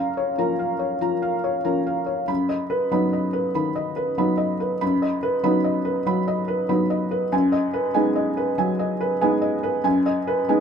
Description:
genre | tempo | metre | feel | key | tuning
neoclassical minimalist piano | 95 BPM | 4/4 | rubato | unclear | A4 = 441 Hz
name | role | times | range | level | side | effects
felt-muted upright piano | solo | 0.0-10.6 s | F#2 to B5 | -20 LUFS | equal | none
room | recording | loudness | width
moderate studio reverb, RT60 0.5 s | minimal, uncompressed stereo recording | -20 LUFS | side -7 dB against mid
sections
0.0-10.6 A section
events
none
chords
0.0 C#6/F#; 2.3 B/F#; 7.3 G#m7/F#

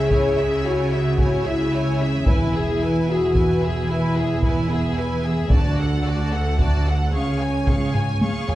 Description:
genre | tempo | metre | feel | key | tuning
cinematic, epic orchestral film score | 74 BPM (dotted quarters) | 12/8 | straight | unclear | A4 = 439 Hz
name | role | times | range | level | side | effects
bright symphonic violin section | melody | 0.0-8.6 s | E5 to C#6 | -33 LUFS | left 2 dB | none
rich symphonic violin section | second line | 0.0-8.6 s | G#4 to G#5 | -29 LUFS | left 2 dB | none
rich symphonic viola section | accompaniment | 0.0-8.6 s | E4 to C#5 | -31 LUFS | right 1 dB | none
mellow French horn section | sustained chords | 0.0-7.9 s | A3 to G#4 | -24 LUFS | left 2 dB | none
rich chamber cello section | bass | 0.0-8.6 s | C#2 to C#3 | -24 LUFS | right 2 dB | none
rich studio double bass section | bass | 0.0-8.6 s | E1 to D2 | -26 LUFS | right 2 dB | none
solo taiko drums | drums | 0.1-8.6 s | none | -22 LUFS | equal | none
room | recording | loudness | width
wet recital hall reverb, RT60 1.5 s | heard from further back in the room, nothing above 10.8 kHz | -18 LUFS | side -15 dB against mid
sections
0.0-8.6 A section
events
drum fill 7.9-8.6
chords
0.0 C#m; 2.3 E; 5.5 D; 7.1 C#

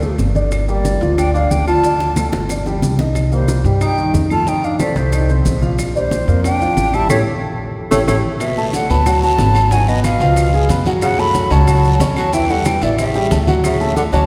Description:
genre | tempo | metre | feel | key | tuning
Afro-Cuban jazz | 183 BPM | 4/4 | straight | D major from 8.4 s | A4 = 440 Hz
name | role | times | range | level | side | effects
breathy mellow silver concert flute | melody | 0.0-14.3 s | C5 to B5 | -22 LUFS | equal | none
warm tenor saxophone | second line | 0.0-14.3 s | B2 to F4 | -26 LUFS | equal | none
warm upright piano | accompaniment | 0.0-14.3 s | D3 to C#6 | -23 LUFS | equal | none
upright bass | bass | 0.0-14.3 s | G1 to G2 | -20 LUFS | equal | none
congas | percussion | 0.0-14.3 s | none | -27 LUFS | equal | none
maracas | percussion | 0.0-14.3 s | none | -36 LUFS | equal | none
bongos | percussion | 0.2-14.1 s | none | -29 LUFS | equal | none
claves | percussion | 0.5-13.8 s | none | -36 LUFS | equal | none
guiro | percussion | 8.4-14.3 s | none | -35 LUFS | equal | none
room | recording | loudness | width
wet church reverb, RT60 3.5 s | recorded in a church or concert hall | -16 LUFS | mono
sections
0.0-8.4 A section; 8.4-14.3 B section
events
drum fill 1.8-3.2, 7.9-8.4; band accent 7.1-8.4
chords
0.0 D5; 0.5 Gm7; 1.8 Dm; 2.5 G5; 3.2 Cm7; 4.5 F7; 5.8 Bb6; 7.1 A7; 8.4 D69; 9.7 G#m7; 10.4 C#7; 11.0 F#m7; 12.3 Em; 13.0 A7; 13.6 Dmaj7

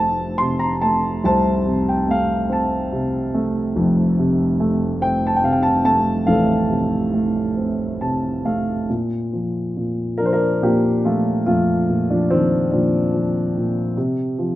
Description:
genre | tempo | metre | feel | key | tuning
classical, lyrical solo piano | 48 BPM (dotted quarters) | 6/8 | rubato | Bb major | A4 = 439 Hz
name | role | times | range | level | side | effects
dark grand piano | solo | 0.0-14.6 s | F1 to C6 | -17 LUFS | equal | none
room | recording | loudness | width
light reverb | close, detailed microphones | -17 LUFS | side -15 dB against mid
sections
0.0-8.9 A section; 8.9-14.6 B section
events
grand piano fill 7.6-8.9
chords
0.0 F; 8.9 Bbmaj7; 14.0 F5

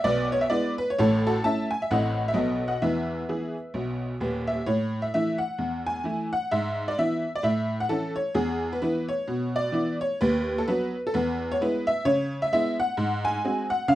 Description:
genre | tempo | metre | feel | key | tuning
jazz, stride piano | 130 BPM | 4/4 | swing 59% on 8ths | E major, A major from 4.7 s | A4 = 440 Hz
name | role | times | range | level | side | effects
tack piano | solo | 0.0-13.9 s | D#1 to A5 | -24 LUFS | equal | none
room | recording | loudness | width
moderate studio reverb, RT60 0.6 s | rough home demo mix | -24 LUFS | side -14 dB against mid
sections
0.0-4.7 A section; 4.7-13.9 B section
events
none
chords
0.0 E7; 1.0 A; 1.9 Am; 2.4 B7; 2.8 E; 4.7 A5; 6.5 E/G#; 7.4 A; 8.4 E5; 10.2 B/D#; 11.1 E; 12.1 C#m7; 13.0 G#7

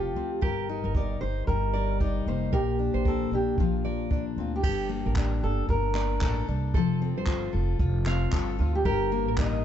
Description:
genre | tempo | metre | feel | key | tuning
acoustic pop | 114 BPM | 4/4 | swing 60% on 16ths | G minor | A4 = 440 Hz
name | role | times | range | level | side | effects
fingerpicked steel-string acoustic guitar | melody | 0.0-9.6 s | F4 to Eb5 | -31 LUFS | right 1 dB | none
fingerpicked steel-string acoustic guitar | accompaniment | 0.0-9.6 s | G2 to Bb4 | -31 LUFS | left 10 dB | none
nylon-string guitar | arpeggios | 0.0-9.6 s | G4 to F5 | -36 LUFS | right 7 dB | none
upright bass | bass | 0.0-9.6 s | F1 to D2 | -29 LUFS | right 1 dB | none
jazz brush drum kit | drums | 0.4-9.5 s | crash cymbal, handclaps, kick drum | -29 LUFS | equal | none
room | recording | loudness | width
little or no reverb | dark, warm production, nothing above 8.0 kHz | -24 LUFS | side -10 dB against mid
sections
0.0-4.6 A section; 4.6-9.6 B section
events
none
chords
0.4 Eb/G; 2.5 Bbadd9; 4.6 Gmadd9; 6.7 F; 8.9 Eb/G

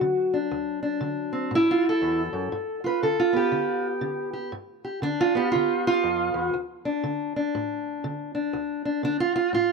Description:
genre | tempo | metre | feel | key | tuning
acoustic country blues, solo or duo | 120 BPM | 4/4 | swing 62% on 8ths | unclear | A4 = 440 Hz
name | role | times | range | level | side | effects
fingerpicked steel-string acoustic guitar | solo | 0.0-9.7 s | D2 to B4 | -23 LUFS | right 1 dB | none
room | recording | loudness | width
studio reverb | dry, close 1970s-style studio recording | -23 LUFS | side -4 dB against mid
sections
0.0-9.7 A section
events
none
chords
0.0 D; 2.5 G7; 6.5 D5

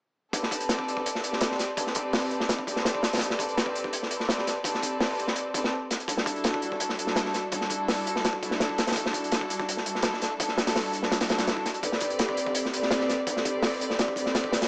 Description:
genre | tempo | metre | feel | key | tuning
drum and bass, jungle | 167 BPM | 4/4 | straight | A minor | A4 = 439 Hz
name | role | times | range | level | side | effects
clear studio string section | sustained chords | 0.3-14.7 s | G3 to D5 | -29 LUFS | equal | vintage 12-bit sampler grit
crunchy breakbeat drum kit | drums | 0.3-14.7 s | hi-hat, kick drum, snare drum | -27 LUFS | equal | high-pass filter on kick, high-pass filter on hats, high-pass filter on snare, high-pass filter on room
room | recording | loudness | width
wet digital room reverb, RT60 0.9 s, studio reverb | small speaker sound | -25 LUFS | side -33 dB against mid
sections
0.3-14.7 A section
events
none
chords
0.3 Am11; 6.1 Em11; 11.8 Am11

